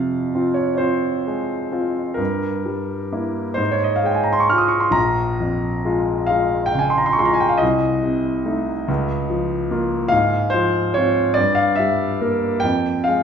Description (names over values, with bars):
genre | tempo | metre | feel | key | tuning
classical, romantic nocturne for solo piano | 42-49 BPM (dotted quarters) | 12/8 | rubato | F minor | A4 = 440 Hz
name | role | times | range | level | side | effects
warm grand piano | solo | 0.0-13.2 s | Bb1 to F6 | -17 LUFS | equal | none
room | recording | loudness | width
wet large studio reverb, RT60 1.4 s | heard from further back in the room | -17 LUFS | side -7 dB against mid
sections
0.0-13.2 A section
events
none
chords
0.0 Fm; 2.2 Edim/G; 3.6 Fm/Ab; 5.0 Bbm7; 7.6 Adim/C; 8.9 Bbm/Db; 10.1 Fm/Ab; 11.4 Edim/G; 12.6 Fm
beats
0.81 2.19 3.60 | 4.97 6.31 7.61 8.88 | 10.12 11.38 12.64